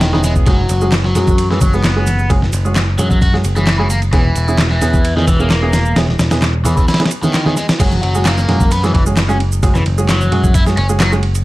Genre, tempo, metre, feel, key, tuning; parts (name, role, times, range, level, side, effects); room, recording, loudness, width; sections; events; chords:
breakbeat, breaks; 131 BPM; 4/4; straight; F# mixolydian; A4 = 438 Hz
crunchy overdriven guitar; riff; 0.0-11.1 s; D#3 to F#4; -19 LUFS; left 1 dB; phaser, digital delay
picked electric bass; bass; 0.0-11.4 s; E1 to F#2; -16 LUFS; equal
dusty soul sampler-style drum kit; drums; 0.0-11.4 s; crash cymbal, kick drum, ride cymbal, snare drum; -16 LUFS; equal; studio reverb
electronic shaker and handclaps; drums; 0.0-11.4 s; -24 LUFS; right 1 dB; studio reverb
warm baby grand piano; stabs; 0.1-11.2 s; G#3 to G#4; -21 LUFS; right 2 dB; digital delay
congas; percussion; 0.1-10.5 s; -25 LUFS; right 1 dB
little or no reverb; vinyl crackle; -11 LUFS; side -18 dB against mid
0.0-7.8 A section; 7.8-11.4 B section
drop 7.8-11.4
0.5 F#sus2; 4.1 E6; 7.8 F#sus2